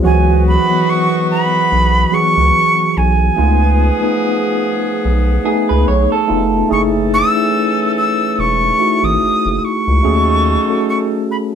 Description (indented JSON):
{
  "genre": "R&B",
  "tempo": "72 BPM",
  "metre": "4/4",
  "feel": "swing 56% on 16ths",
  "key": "C# minor",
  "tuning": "A4 = 440 Hz",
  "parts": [
    { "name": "jazz flute", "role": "melody", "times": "0.0-11.4 s", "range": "G#5 to E6", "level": "-16 LUFS", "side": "right 1 dB", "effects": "none" },
    { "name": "mellow tine electric piano", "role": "accompaniment", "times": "0.0-11.6 s", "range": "E3 to B#4", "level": "-16 LUFS", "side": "equal", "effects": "medium stereo tremolo" },
    { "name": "warm horn section", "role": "stabs", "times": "0.0-11.3 s", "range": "D#3 to A4", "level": "-22 LUFS", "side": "equal", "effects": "none" },
    { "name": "round analog bass", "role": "bass", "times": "0.1-10.6 s", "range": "E1 to D#2", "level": "-15 LUFS", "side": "equal", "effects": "none" },
    { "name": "electric guitar through a small old amp", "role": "second line", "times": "5.5-6.7 s", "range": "G#4 to C#5", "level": "-18 LUFS", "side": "right 5 dB", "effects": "spring reverb" }
  ],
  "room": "moderate studio reverb, RT60 0.6 s",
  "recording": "band playing live in one room",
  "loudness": "-12 LUFS",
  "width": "side -8 dB against mid",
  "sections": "0.0-11.6 A section",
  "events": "none",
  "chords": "0.0 C#m11; 3.4 C#7b13; 6.7 F#m9; 10.0 D#m7b5",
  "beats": "| 0.03 0.86 1.70 2.53 | 3.36 4.20 5.03 5.86 | 6.70 7.53 8.36 9.20 | 10.03 10.86"
}